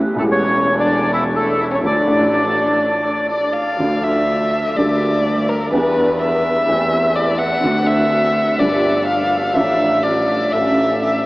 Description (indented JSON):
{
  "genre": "tango",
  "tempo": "124 BPM",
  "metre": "4/4",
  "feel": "rubato",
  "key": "D harmonic minor, D minor from 3.8 s",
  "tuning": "A4 = 442 Hz",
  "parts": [
    { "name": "dark concert grand piano", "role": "accompaniment", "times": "0.0-11.3 s", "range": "E1 to A4", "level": "-20 LUFS", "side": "equal", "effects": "ensemble chorus" },
    { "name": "clear double bass", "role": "bass", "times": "0.0-11.3 s", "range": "E1 to E2", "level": "-24 LUFS", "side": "equal", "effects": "none" },
    { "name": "bandoneon", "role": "melody", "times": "0.2-3.3 s", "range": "A4 to E5", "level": "-19 LUFS", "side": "equal", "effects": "diffuse ambient delay" },
    { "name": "warm violin", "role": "second line", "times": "0.2-11.3 s", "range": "A3 to F#5", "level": "-18 LUFS", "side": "equal", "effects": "none" }
  ],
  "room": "wet huge ambient reverb, RT60 8.0 s",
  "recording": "dreamy mix soaked in reverb, vinyl crackle, AM radio sound",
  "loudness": "-14 LUFS",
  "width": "side -20 dB against mid",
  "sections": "0.0-3.8 A section; 3.8-11.3 B section",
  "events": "stop 2.8-3.8; violin solo 3.8-11.3",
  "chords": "0.0 A7; 1.8 Dm; 4.8 Gmadd9/D; 5.7 Em7; 6.7 Am7/E; 7.6 D7; 8.6 Gm7; 9.5 Dm/A; 10.5 A"
}